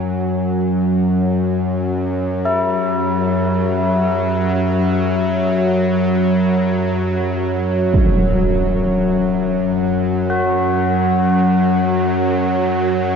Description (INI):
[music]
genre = dark ambient drone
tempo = free time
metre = none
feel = none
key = unclear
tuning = A4 = 438 Hz
[part]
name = tubular bells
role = arpeggios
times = 0.0-13.2 s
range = E4 to F#4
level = -23 LUFS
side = left 2 dB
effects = diffuse ambient delay
[part]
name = bowed-like drone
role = drone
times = 0.0-13.2 s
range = F#2 to F#3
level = -16 LUFS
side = equal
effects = built-in reverb
[part]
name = impact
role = percussion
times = 7.9-8.1 s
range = none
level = -20 LUFS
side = right 1 dB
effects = low-pass filter on sfx
[sound]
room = wet huge ambient reverb, RT60 6.9 s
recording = nothing above 7.5 kHz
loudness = -15 LUFS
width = side -6 dB against mid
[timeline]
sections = 0.0-13.2 A section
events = none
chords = 0.0 F#5